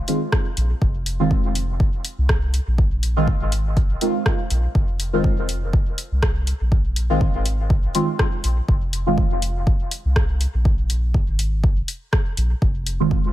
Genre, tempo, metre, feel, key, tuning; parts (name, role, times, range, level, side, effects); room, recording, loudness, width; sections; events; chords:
dub techno; 122 BPM; 4/4; swing 55% on 16ths; F minor; A4 = 441 Hz
deep mellow chord stab; stabs; 0.1-9.2, 13.0-13.2 s; Eb3 to F4; -23 LUFS; right 1 dB; chorus, phaser, sidechain pumping, dub echo
deep house drum kit; drums; 0.1-13.0 s; hi-hat, rim click; -26 LUFS; equal
electronic kick drum; drums; 0.3-13.2 s; -20 LUFS; equal
soft dub sub bass; bass; 0.6-13.3 s; F1 to C2; -22 LUFS; equal; tube saturation, sidechain pumping
digital ambience; -18 LUFS; side -14 dB against mid
0.0-13.3 A section
0.0 Fm7